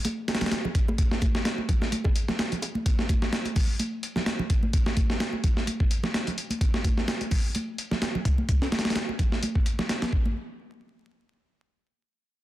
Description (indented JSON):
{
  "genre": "breakbeat",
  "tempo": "128 BPM",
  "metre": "4/4",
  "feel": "swing 55% on 16ths",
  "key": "none",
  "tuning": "none",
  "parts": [
    { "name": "breakbeat sampler-style drum kit", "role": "drums", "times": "0.0-10.2 s", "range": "hi-hat, kick drum, snare drum", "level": "-24 LUFS", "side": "equal", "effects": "none" },
    { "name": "congas and bongos", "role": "percussion", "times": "0.0-10.3 s", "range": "none", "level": "-33 LUFS", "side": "right 1 dB", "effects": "none" }
  ],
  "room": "light reverb",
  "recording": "dense, heavily limited modern master, vinyl crackle",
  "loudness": "-24 LUFS",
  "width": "side -15 dB against mid",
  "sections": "0.0-10.4 A section; 10.4-12.4 B section",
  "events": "none",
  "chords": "none"
}